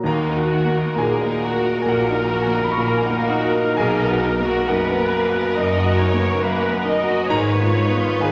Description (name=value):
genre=classical, romantic movement for piano and orchestra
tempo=58-70 BPM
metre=4/4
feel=rubato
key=Eb minor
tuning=A4 = 440 Hz
part: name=clear baby grand piano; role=melody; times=0.0-8.3 s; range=B1 to Db6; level=-23 LUFS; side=equal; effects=none
part: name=clear studio viola section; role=accompaniment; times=0.0-8.3 s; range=Gb4 to D#5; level=-28 LUFS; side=equal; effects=none
part: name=rich studio double bass section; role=bass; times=0.0-8.0 s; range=F#1 to Eb2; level=-30 LUFS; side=equal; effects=none
part: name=warm studio cello section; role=bass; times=0.0-8.0 s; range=F#2 to Eb3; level=-29 LUFS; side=equal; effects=none
part: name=rich symphonic violin section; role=melody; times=0.1-8.3 s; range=Bb4 to Cb5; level=-27 LUFS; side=equal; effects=none
part: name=warm studio violin section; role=second line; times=0.1-8.3 s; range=Ab3 to Gb4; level=-30 LUFS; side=equal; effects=none
room=wet scoring stage reverb, RT60 1.7 s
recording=none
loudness=-19 LUFS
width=mono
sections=0.1-8.3 A section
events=none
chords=0.1 Ebm; 3.8 Bmaj7; 7.3 Fm7b5/Ab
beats=| 0.05 0.98 1.89 2.79 | 3.78 4.67 5.54 6.41 | 7.29 8.19